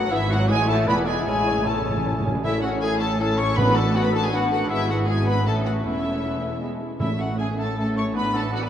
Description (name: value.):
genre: quick classical-period movement for symphony orchestra.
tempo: 157 BPM.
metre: 3/4.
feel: straight.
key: A major.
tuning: A4 = 440 Hz.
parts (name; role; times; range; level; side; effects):
muted chamber violin section; melody; 0.0-8.7 s; E5 to C#6; -30 LUFS; left 2 dB; none.
dark cor anglais; second line; 0.0-8.7 s; E4 to C#5; -31 LUFS; equal; none.
mellow hollow silver concert flute; second line; 0.0-8.7 s; E5 to C#6; -31 LUFS; left 1 dB; none.
muted chamber violin section; second line; 0.0-8.7 s; E4 to B5; -32 LUFS; equal; none.
muted studio viola section; accompaniment; 0.0-8.7 s; E3 to D5; -31 LUFS; right 1 dB; none.
dark French horn section; sustained chords; 0.0-8.7 s; E3 to A4; -30 LUFS; left 1 dB; none.
muted chamber cello section; bass; 0.0-8.7 s; E2 to A2; -29 LUFS; equal; none.
muted studio double bass section; bass; 0.0-8.7 s; E1 to A1; -28 LUFS; equal; none.
dark clarinet; second line; 0.1-8.6 s; B3 to E4; -33 LUFS; right 2 dB; none.
warm bassoon; accompaniment; 0.1-8.6 s; G#3 to D4; -33 LUFS; left 4 dB; none.
timpani; percussion; 1.3-4.1, 7.0-7.5 s; A2; -30 LUFS; right 2 dB; none.
room: wet cathedral reverb, RT60 5.8 s.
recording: in a vast, echoing space.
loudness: -20 LUFS.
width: side -10 dB against mid.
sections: 0.0-2.4 A section; 2.4-8.7 A section.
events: timpani fill 1.3-2.4.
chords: 0.1 E/G#; 0.5 A; 0.9 E7; 1.3 A; 3.6 Bm7/A; 4.7 E/G#; 5.5 A; 5.8 A/E; 6.6 E; 7.0 A; 8.1 Bm7/A.